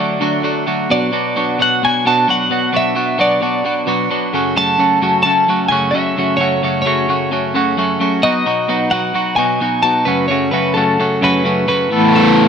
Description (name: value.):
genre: rock.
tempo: 131 BPM.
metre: 4/4.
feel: straight.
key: F# minor.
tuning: A4 = 440 Hz.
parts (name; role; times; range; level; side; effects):
twelve-string electric guitar; melody; 0.0-12.5 s; A4 to A5; -16 LUFS; equal; wide subtle chorus, slapback echo.
crunchy overdriven guitar; riff; 0.0-12.5 s; F#2 to A4; -15 LUFS; equal; none.
room: light reverb.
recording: none.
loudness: -13 LUFS.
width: side -7 dB against mid.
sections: 0.0-11.9 A section.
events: none.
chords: 0.0 D; 0.9 Bm; 4.3 F#m; 8.2 B; 10.1 F#m; 11.9 Asus2.